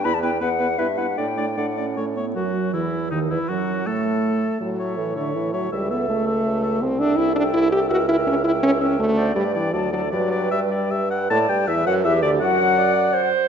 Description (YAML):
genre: quick classical-period movement for wind quintet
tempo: 162 BPM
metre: 3/4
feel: rubato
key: G major from 6.8 s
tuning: A4 = 442 Hz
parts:
  - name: mellow silver concert flute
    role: melody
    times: 0.0-13.3 s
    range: Eb4 to B5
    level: -28 LUFS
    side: left 8 dB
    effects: none
  - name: warm oboe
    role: second line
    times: 0.0-13.3 s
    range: Eb4 to A5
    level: -27 LUFS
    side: left 2 dB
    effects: none
  - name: dark clarinet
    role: accompaniment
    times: 0.0-13.5 s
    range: Eb3 to D5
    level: -26 LUFS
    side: right 8 dB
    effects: none
  - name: warm French horn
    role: accompaniment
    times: 0.0-13.3 s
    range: D3 to G4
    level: -23 LUFS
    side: equal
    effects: none
  - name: mellow bassoon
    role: bass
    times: 0.0-13.3 s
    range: C2 to A2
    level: -26 LUFS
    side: right 2 dB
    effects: none
room: wet concert hall reverb, RT60 1.9 s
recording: nothing above 8.0 kHz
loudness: -19 LUFS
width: side -7 dB against mid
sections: 0.0-2.4 A section; 2.4-11.3 B section; 11.3-13.5 A section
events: none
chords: 0.0 E5; 0.8 Em/G; 1.2 D/A; 2.0 A; 2.4 Esus2; 3.5 F#m; 4.6 A; 5.7 A/C#; 6.8 Am7/C; 7.9 C#dim7; 9.0 D7; 9.4 G; 9.7 D; 10.1 G; 12.4 D7/F#